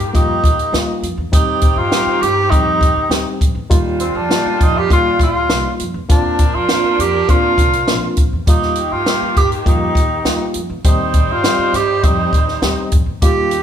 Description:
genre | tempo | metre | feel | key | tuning
uptempo 1960s-style soul | 101 BPM | 4/4 | straight | Eb major | A4 = 441 Hz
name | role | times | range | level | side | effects
mellow saxophone section | second line | 0.0-13.6 s | Bb2 to C5 | -24 LUFS | right 2 dB | none
upright bass | bass | 0.0-13.6 s | Bb1 to G2 | -24 LUFS | equal | none
compact cocktail drum kit | drums | 0.0-13.6 s | hi-hat, kick drum, snare drum | -15 LUFS | equal | none
bright reed electric piano | accompaniment | 0.1-13.6 s | G3 to G4 | -22 LUFS | left 2 dB | overdrive, fast tremolo
breathy tenor saxophone | melody | 0.2-13.6 s | C4 to G4 | -17 LUFS | right 1 dB | none
room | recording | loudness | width
moderate large studio reverb, RT60 1.2 s | band playing live in one room | -13 LUFS | side -9 dB against mid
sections
0.0-13.6 A section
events
none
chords
0.0 Ebadd9; 1.3 Cm/Eb; 3.7 Ebadd9; 6.1 Bbadd9/Eb; 8.5 Ebadd9; 10.9 Cm/Eb

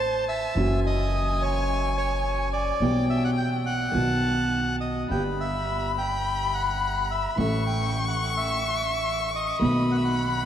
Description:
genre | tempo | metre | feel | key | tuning
tango | 106 BPM | 4/4 | rubato | unclear | A4 = 439 Hz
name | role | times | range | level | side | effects
bandoneon | melody | 0.0-10.4 s | C5 to G5 | -28 LUFS | right 2 dB | none
warm violin | second line | 0.0-10.5 s | G5 to C#6 | -30 LUFS | left 4 dB | none
dark baby grand piano | accompaniment | 0.0-10.5 s | G1 to A4 | -28 LUFS | right 1 dB | none
upright bass | bass | 0.0-10.5 s | F#1 to B1 | -30 LUFS | equal | none
room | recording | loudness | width
wet cathedral reverb, RT60 5.5 s | in a vast, echoing space | -23 LUFS | side -10 dB against mid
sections
0.0-10.5 A section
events
none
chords
0.0 Am; 0.6 F#7; 2.8 Em/B; 3.9 B; 5.1 G; 7.4 A; 9.6 B7

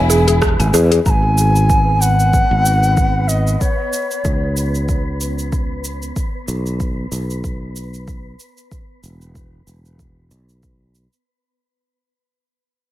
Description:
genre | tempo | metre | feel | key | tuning
organic downtempo | 94 BPM | 4/4 | swing 56% on 16ths | unclear | A4 = 444 Hz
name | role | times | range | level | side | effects
bright reedy bass bansuri | melody | 0.0-4.6 s | C#5 to A#5 | -19 LUFS | left 1 dB | dub echo
warm symphonic string section | sustained chords | 0.0-1.0 s | F#3 to E4 | -25 LUFS | left 2 dB | sidechain pumping
mallet-like synth pluck | arpeggios | 0.0-1.0 s | G#4 to G#5 | -19 LUFS | left 2 dB | chorus, phaser, dub echo
sustaining fretless electric bass | bass | 0.0-11.1 s | E1 to E2 | -17 LUFS | equal | tube saturation, sidechain pumping
wind-like tuned noise texture | texture | 0.0-11.3 s | B3 to B4 | -30 LUFS | right 2 dB | built-in reverb
deep house drum kit | drums | 0.1-11.2 s | cabasa, hi-hat, rim click | -24 LUFS | right 2 dB | tape echo
electronic kick drum | drums | 0.4-10.8 s | none | -20 LUFS | equal | none
room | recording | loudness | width
light reverb | echo-heavy mix | -14 LUFS | side -14 dB against mid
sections
0.0-1.1 A section; 1.1-11.3 B section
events
fade-out 1.1-11.3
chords
0.0 E; 1.1 G#m7; 3.6 Bsus2/C#; 6.2 N.C.; 8.7 E5

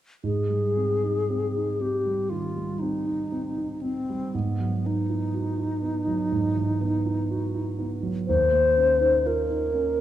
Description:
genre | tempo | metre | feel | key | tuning
classical, impressionist duo for alto flute and grand piano | 60 BPM | 4/4 | rubato | unclear | A4 = 437 Hz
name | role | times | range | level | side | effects
hollow alto flute | melody | 0.2-10.0 s | B3 to C5 | -25 LUFS | left 2 dB | none
dark concert grand piano | accompaniment | 0.2-10.0 s | Eb2 to F#4 | -27 LUFS | right 2 dB | none
room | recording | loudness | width
wet recital hall reverb, RT60 1.3 s | dark, warm production | -23 LUFS | side -12 dB against mid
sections
0.2-10.0 A section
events
none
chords
0.2 Abmaj7; 4.3 Eadd9/G#; 8.3 Eb7sus2

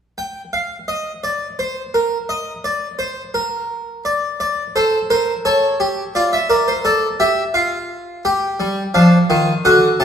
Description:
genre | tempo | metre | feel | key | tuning
classical, baroque-style 3-part fugue for harpsichord | 86 BPM | 3/4 | straight | G minor | A4 = 439 Hz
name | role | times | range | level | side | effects
harpsichord | solo | 0.2-10.0 s | C3 to A5 | -16 LUFS | equal | none
room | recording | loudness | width
wet recital hall reverb, RT60 1.6 s | recorded in a church or concert hall | -16 LUFS | side -8 dB against mid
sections
0.0-10.0 A section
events
none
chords
0.0 N.C.; 4.1 D5; 5.5 A7; 6.2 Dm/F; 7.5 N.C.; 8.3 G5

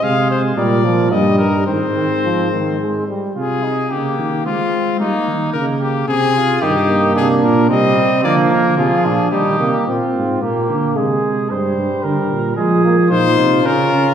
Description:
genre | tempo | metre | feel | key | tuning
classical, imitative canzona for brass ensemble | 110 BPM | 3/4 | straight | Ab major | A4 = 440 Hz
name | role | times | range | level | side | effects
clear trumpet | melody | 0.0-9.9, 13.1-14.1 s | Eb4 to F5 | -19 LUFS | left 5 dB | none
mellow trumpet | second line | 0.0-14.1 s | Bb3 to C5 | -21 LUFS | right 2 dB | none
clear trombone | accompaniment | 0.0-3.4, 6.6-14.1 s | Eb3 to Eb4 | -19 LUFS | right 2 dB | none
mellow tuba | bass | 0.0-14.1 s | G2 to Ab3 | -18 LUFS | right 1 dB | none
room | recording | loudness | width
wet scoring stage reverb, RT60 1.8 s | heard from further back in the room | -14 LUFS | side -8 dB against mid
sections
0.0-3.4 A section; 3.4-9.9 B section; 9.9-14.1 A section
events
none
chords
0.0 Fm/C; 0.6 Bb; 1.1 Eb/G; 1.7 Ab; 3.4 Ab/C; 4.5 Fm/Ab; 5.0 Eb; 6.1 Ab/C; 6.6 Eb/G; 7.7 Cm; 8.2 Bb/D; 9.3 Eb; 9.9 Bb; 11.0 Ab/C; 11.5 Gm; 12.6 Fm; 13.1 Bbm

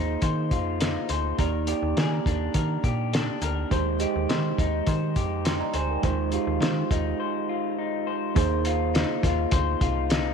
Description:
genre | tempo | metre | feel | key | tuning
indie pop, bedroom pop | 103 BPM | 4/4 | straight | unclear | A4 = 440 Hz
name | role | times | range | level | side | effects
electric guitar through a small old amp | accompaniment | 0.0-10.3 s | Eb3 to C5 | -29 LUFS | left 12 dB | wide subtle chorus, warbly pitch drift
mellow tine electric piano | accompaniment | 0.0-10.3 s | Ab3 to C6 | -29 LUFS | right 12 dB | cassette tape
slap-like FM bass | bass | 0.0-10.3 s | C2 to Eb3 | -28 LUFS | equal | none
cloth-damped thuddy drum kit | drums | 0.2-10.2 s | hi-hat, kick drum, snare drum | -26 LUFS | equal | none
room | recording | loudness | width
light reverb, small room reverb | 1960s-style stereo with parts hard left and right | -23 LUFS | side -6 dB against mid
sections
0.0-8.4 A section; 8.4-10.3 B section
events
break 7.2-8.4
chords
0.0 Bb9sus4/Eb; 1.4 Ebmaj7; 3.7 Abmaj7/Eb; 6.0 Fm7/Eb; 8.4 Bb9sus4/Eb

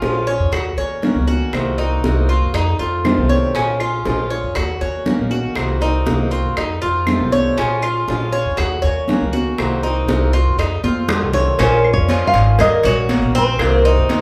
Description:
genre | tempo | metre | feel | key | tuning
latin, Cuban son and guajira | 119 BPM | 4/4 | straight | Bb minor | A4 = 441 Hz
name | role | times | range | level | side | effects
picked swing-style acoustic guitar | accompaniment | 0.0-14.2 s | C3 to Gb4 | -26 LUFS | equal | none
Cuban tres | arpeggios | 0.0-14.2 s | C4 to Db5 | -24 LUFS | equal | none
upright bass | bass | 0.0-14.2 s | Ab1 to Gb2 | -22 LUFS | equal | none
bongos and cowbell | percussion | 0.0-14.2 s | none | -25 LUFS | equal | none
congas | percussion | 0.0-14.2 s | none | -25 LUFS | equal | none
claves | percussion | 0.5-13.8 s | none | -31 LUFS | equal | none
nylon-string guitar | melody | 11.6-14.2 s | C5 to F5 | -21 LUFS | equal | none
room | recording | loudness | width
wet large studio reverb, RT60 0.8 s | band playing live in one room | -17 LUFS | mono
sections
0.0-11.6 A section; 11.6-14.2 B section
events
drum fill 10.8-11.6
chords
0.0 Bbm7; 0.5 Ebm7; 1.5 Cm7b5; 2.5 F7; 3.5 Bbm7; 4.6 Ebm7; 5.6 Cm7b5; 6.6 F7; 7.6 Bbm7; 8.6 Ebm7; 9.6 Cm7b5; 10.6 F7; 11.6 Bbm7; 12.6 Ebm7; 13.6 Cm7b5

